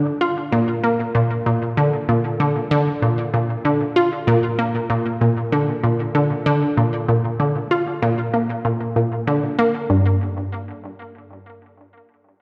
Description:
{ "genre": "ambient", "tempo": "96 BPM", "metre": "4/4", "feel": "straight", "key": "unclear", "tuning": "A4 = 439 Hz", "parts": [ { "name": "resonant blip pluck", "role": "solo", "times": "0.0-10.2 s", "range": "G2 to F4", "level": "-20 LUFS", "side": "equal", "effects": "chorus, tape echo" } ], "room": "wet echo chamber reverb, RT60 2.1 s", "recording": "echo-heavy mix", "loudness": "-20 LUFS", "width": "mono", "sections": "0.0-9.9 A section; 9.9-12.4 B section", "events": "none", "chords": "none" }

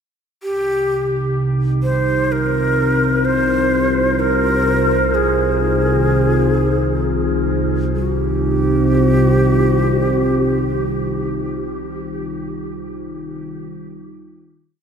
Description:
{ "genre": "dark ambient drone", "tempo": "64 BPM", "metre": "4/4", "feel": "straight", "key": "unclear", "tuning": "A4 = 441 Hz", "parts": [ { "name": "breathy hollow shakuhachi", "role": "melody", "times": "0.4-12.2 s", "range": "G4 to C5", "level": "-20 LUFS", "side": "equal", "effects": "diffuse ambient delay" }, { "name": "dark analog pad", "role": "sustained chords", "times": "1.1-12.4 s", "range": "C3 to C5", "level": "-23 LUFS", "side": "right 1 dB", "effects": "chorus" }, { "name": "analog drone", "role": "drone", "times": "0.8-12.2 s", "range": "C2 to C3", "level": "-19 LUFS", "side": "equal", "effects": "chorus" }, { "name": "bronze singing bowl", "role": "arpeggios", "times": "5.6-12.2 s", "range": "Eb3 to F4", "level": "-24 LUFS", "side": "left 1 dB", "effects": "diffuse ambient delay" } ], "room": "wet cathedral reverb, RT60 6.8 s", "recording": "in a vast, echoing space", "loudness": "-15 LUFS", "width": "side -7 dB against mid", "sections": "0.5-8.0 A section; 8.0-11.7 final chord", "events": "fade-in on singing bowl 0.5-8.0", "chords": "0.5 Ab69/C; 8.0 Cm" }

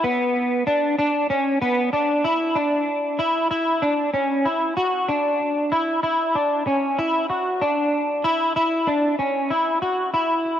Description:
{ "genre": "dream pop", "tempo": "95 BPM", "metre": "4/4", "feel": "straight", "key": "unclear", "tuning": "A4 = 439 Hz", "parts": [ { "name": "electric guitar at the edge of break-up", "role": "solo", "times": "0.0-10.6 s", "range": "B3 to F#4", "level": "-19 LUFS", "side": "equal", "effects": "analog chorus, analog delay" } ], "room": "moderate lush hall reverb, RT60 2.7 s", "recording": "cassette tape", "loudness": "-19 LUFS", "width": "side -10 dB against mid", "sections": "0.0-2.6 A section; 2.6-10.6 B section", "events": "none", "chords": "none" }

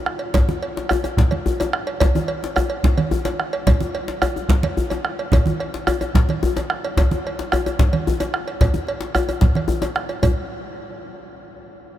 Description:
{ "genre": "west african traditional, West African drum ensemble", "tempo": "146 BPM (dotted quarters)", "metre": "12/8", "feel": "straight", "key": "none", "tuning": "none", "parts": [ { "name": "bombo", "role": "percussion", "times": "0.1-10.4 s", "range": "none", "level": "-22 LUFS", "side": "equal", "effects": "none" }, { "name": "cowbell", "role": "percussion", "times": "0.2-10.4 s", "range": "none", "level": "-28 LUFS", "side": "right 4 dB", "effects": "none" }, { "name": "congas", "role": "percussion", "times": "0.3-10.4 s", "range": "none", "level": "-25 LUFS", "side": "right 3 dB", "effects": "none" }, { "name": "djembe", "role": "percussion", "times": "0.3-10.4 s", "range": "none", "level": "-24 LUFS", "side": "left 3 dB", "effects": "none" } ], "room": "moderate huge ambient reverb, RT60 7.8 s", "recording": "in a vast, echoing space", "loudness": "-18 LUFS", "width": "side -12 dB against mid", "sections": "0.0-10.2 A section; 10.2-11.8 B section", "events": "speeding up 0.0-11.8", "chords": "none" }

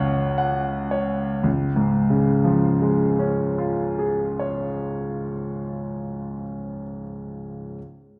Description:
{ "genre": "classical, romantic character piece for solo piano", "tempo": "59 BPM", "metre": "2/4", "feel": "rubato", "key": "Db major", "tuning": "A4 = 441 Hz", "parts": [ { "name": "bright grand piano", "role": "solo", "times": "0.0-7.8 s", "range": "Db2 to Gb5", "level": "-24 LUFS", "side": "equal", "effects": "none" } ], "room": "wet recital hall reverb, RT60 1.7 s", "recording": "none", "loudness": "-23 LUFS", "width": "mono", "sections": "0.0-1.4 A section; 1.4-5.5 B section", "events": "slowing down 0.0-1.4", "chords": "0.0 Gb5/Db; 1.4 Db" }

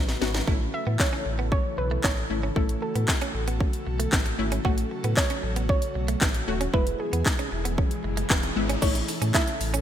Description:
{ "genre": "dance-pop", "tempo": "115 BPM", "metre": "4/4", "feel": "straight", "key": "A major", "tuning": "A4 = 441 Hz", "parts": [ { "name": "soft round pluck", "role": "melody", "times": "0.0-9.8 s", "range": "G#4 to E5", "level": "-32 LUFS", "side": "right 1 dB", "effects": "chorus, ping-pong delay" }, { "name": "airy breathy pad", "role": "sustained chords", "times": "0.0-9.8 s", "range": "B2 to B4", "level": "-34 LUFS", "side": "equal", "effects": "chorus, sidechain pumping" }, { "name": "direct-recorded clean electric guitar", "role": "riff", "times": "0.0-9.8 s", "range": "G#3 to F#4", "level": "-35 LUFS", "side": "right 7 dB", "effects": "analog chorus" }, { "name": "sub bass with octave", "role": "bass", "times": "0.0-9.8 s", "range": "D#1 to A2", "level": "-29 LUFS", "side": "equal", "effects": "sidechain pumping" }, { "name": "house drum kit", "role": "drums", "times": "0.1-9.8 s", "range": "crash cymbal, handclaps, hi-hat, kick drum, shaker, snare drum", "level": "-25 LUFS", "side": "equal", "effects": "gated reverb" }, { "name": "punchy chord stab", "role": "accompaniment", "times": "0.2-9.8 s", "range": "G#3 to F#4", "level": "-32 LUFS", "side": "left 4 dB", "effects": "chorus, sidechain pumping" }, { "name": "riser", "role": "sound effects", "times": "7.9-8.8 s", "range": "none", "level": "-37 LUFS", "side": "equal", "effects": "none" }, { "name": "group handclap", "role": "percussion", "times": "9.3-9.5 s", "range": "none", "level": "barely audible", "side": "none", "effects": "none" } ], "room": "light reverb", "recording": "bright 1980s-style digital production", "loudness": "-23 LUFS", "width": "side -10 dB against mid", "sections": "0.0-8.8 A section", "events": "drum fill 0.0-0.5; riser 7.9-8.8", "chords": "0.5 A; 4.6 F#m/A; 6.7 E; 8.8 A" }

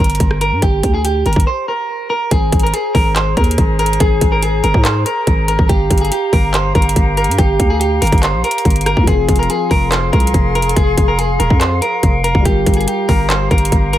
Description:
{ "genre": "hip hop, trap", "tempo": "142 BPM", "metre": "4/4", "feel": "half-time", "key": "G phrygian", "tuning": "A4 = 444 Hz", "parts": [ { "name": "electric guitar at the edge of break-up", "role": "melody", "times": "0.0-14.0 s", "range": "G4 to C5", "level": "-17 LUFS", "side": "right 2 dB", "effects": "none" }, { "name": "growling 808-style bass", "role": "bass", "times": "0.0-14.0 s", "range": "Eb1 to Ab2", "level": "-17 LUFS", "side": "equal", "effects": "none" }, { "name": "trap drum kit", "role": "drums", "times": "0.0-14.0 s", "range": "handclaps, hi-hat, kick drum, rim click", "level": "-15 LUFS", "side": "equal", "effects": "none" }, { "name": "mellow hollow small flute group", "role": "sustained chords", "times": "2.3-14.0 s", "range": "G4 to C6", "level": "-22 LUFS", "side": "left 2 dB", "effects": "none" }, { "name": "felt-muted upright piano", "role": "accompaniment", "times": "9.0-14.0 s", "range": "F3 to Bb4", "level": "-24 LUFS", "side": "left 6 dB", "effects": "none" } ], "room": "digital ambience", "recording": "none", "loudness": "-12 LUFS", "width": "side -12 dB against mid", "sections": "0.0-2.3 A section; 2.3-14.0 B section", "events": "break 1.5-2.3", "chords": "0.0 Gm; 2.3 Abadd9; 5.7 Gm7; 9.1 Fm; 12.5 Gm7" }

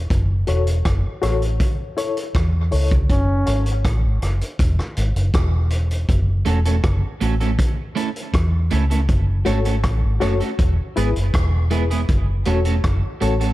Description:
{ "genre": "dub reggae", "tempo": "80 BPM", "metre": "4/4", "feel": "straight", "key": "F# minor", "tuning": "A4 = 440 Hz", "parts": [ { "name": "vintage muted fingered electric bass", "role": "bass", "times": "0.0-13.5 s", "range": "E1 to E2", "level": "-19 LUFS", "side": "equal", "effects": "none" }, { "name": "vintage drum kit", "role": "drums", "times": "0.1-13.5 s", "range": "hi-hat, kick drum, rim click", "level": "-23 LUFS", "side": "equal", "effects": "none" }, { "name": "bright reed electric piano", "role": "stabs", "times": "0.5-3.7, 9.4-13.4 s", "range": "E4 to C#5", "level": "-26 LUFS", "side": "left 5 dB", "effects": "tremolo, high-pass filter, dub echo" }, { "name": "clear trombone", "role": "melody", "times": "3.1-3.6 s", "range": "C#4", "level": "-25 LUFS", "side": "equal", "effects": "dub echo" }, { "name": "electric guitar at the edge of break-up", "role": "accompaniment", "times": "6.5-13.5 s", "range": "G#3 to A4", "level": "-25 LUFS", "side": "right 5 dB", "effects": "wide subtle chorus, high-pass filter, dub echo" } ], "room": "small room ambience", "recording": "echo-heavy mix", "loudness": "-17 LUFS", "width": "side -17 dB against mid", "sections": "0.0-13.5 A section", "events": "break 0.0-6.1", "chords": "0.1 F#m; 1.6 A; 3.1 F#m; 4.6 N.C.; 6.1 F#m; 7.6 A; 9.1 F#m; 10.6 E; 12.1 F#m" }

